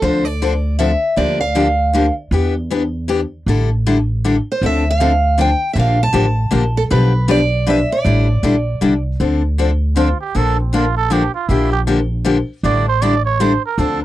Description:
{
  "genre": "acoustic string swing (jazz manouche)",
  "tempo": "157 BPM",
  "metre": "3/4",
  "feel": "swing 62% on 8ths",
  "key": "D minor",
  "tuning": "A4 = 440 Hz",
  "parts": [
    { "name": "picked steel-string acoustic guitar", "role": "melody", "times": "0.0-2.1, 4.5-9.0 s", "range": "A4 to A5", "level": "-18 LUFS", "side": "right 2 dB", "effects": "none" },
    { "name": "picked steel-string acoustic guitar", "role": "accompaniment", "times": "0.0-14.0 s", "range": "B2 to B4", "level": "-18 LUFS", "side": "left 4 dB", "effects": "none" },
    { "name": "upright bass", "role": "bass", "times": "0.0-14.0 s", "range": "A1 to E2", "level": "-17 LUFS", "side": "equal", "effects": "none" },
    { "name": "trumpet with cup mute", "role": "second line", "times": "10.0-14.0 s", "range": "C4 to D5", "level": "-19 LUFS", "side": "right 8 dB", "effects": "none" }
  ],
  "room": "little or no reverb",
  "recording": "dry, close 1970s-style studio recording",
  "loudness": "-14 LUFS",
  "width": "side -14 dB against mid",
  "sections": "0.0-9.2 A section; 9.2-14.0 B section",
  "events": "muted trumpet solo 9.2-14.0",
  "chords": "0.0 Dm7; 1.2 Gm7/D; 2.3 Em7; 3.5 A7sus4; 4.6 Dm7; 5.8 Bb6; 6.9 G7/B; 8.1 A7sus4; 9.2 Dm7; 10.3 Bbmaj7; 11.5 Gm7/Bb; 12.6 A7sus4",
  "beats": "| 0.02 0.40 0.79 | 1.17 1.55 1.94 | 2.32 2.70 3.08 | 3.46 3.85 4.23 | 4.61 4.99 5.38 | 5.76 6.14 6.52 | 6.90 7.29 7.67 | 8.05 8.43 8.81 | 9.20 9.58 9.96 | 10.34 10.73 11.11 | 11.49 11.87 12.26 | 12.64 13.02 13.40 | 13.79"
}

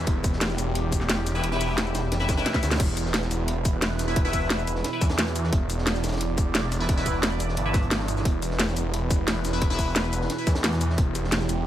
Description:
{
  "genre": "dark technical drum and bass",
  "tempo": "176 BPM",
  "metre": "4/4",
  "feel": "straight",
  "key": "E minor",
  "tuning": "A4 = 440 Hz",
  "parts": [
    { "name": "sweeping resonant pad", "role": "sustained chords", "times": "0.0-11.7 s", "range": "B2 to D5", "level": "-31 LUFS", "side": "right 2 dB", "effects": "chorus, sidechain pumping" },
    { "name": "band-passed chord stab", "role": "stabs", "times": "0.0-10.5 s", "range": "E4 to E5", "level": "-32 LUFS", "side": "left 2 dB", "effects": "phaser, digital delay" },
    { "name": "snarling distorted saw bass", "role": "bass", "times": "0.0-11.7 s", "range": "E1 to E2", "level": "-27 LUFS", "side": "equal", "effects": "distortion, tube saturation, sidechain pumping" },
    { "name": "crunchy breakbeat drum kit", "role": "drums", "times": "0.1-11.6 s", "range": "hi-hat, snare drum", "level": "-36 LUFS", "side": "equal", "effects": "high-pass filter on hats, studio reverb, high-pass filter on snare, high-pass filter on room" },
    { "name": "drum and bass drum kit", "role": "drums", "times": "0.1-11.6 s", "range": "crash cymbal, hi-hat, shaker, snare drum", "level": "-27 LUFS", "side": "equal", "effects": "overdrive, studio reverb" },
    { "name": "electronic kick drum", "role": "drums", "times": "0.1-11.0 s", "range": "none", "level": "-24 LUFS", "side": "equal", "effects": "overdrive, studio reverb" }
  ],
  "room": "little or no reverb",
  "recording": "none",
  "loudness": "-22 LUFS",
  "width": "side -12 dB against mid",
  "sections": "0.0-2.8 A section; 2.8-11.7 A section",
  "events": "drop 0.0-2.8, 2.8-11.7; drum fill 2.5-2.8",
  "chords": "0.0 E5",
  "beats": "| 0.07 0.41 0.75 1.09 | 1.44 1.78 2.12 2.46 | 2.80 3.14 3.48 3.82 | 4.16 4.50 4.84 5.18 | 5.53 5.87 6.21 6.55 | 6.89 7.23 7.57 7.91 | 8.25 8.59 8.94 9.28 | 9.62 9.96 10.30 10.64 | 10.98 11.32 11.66"
}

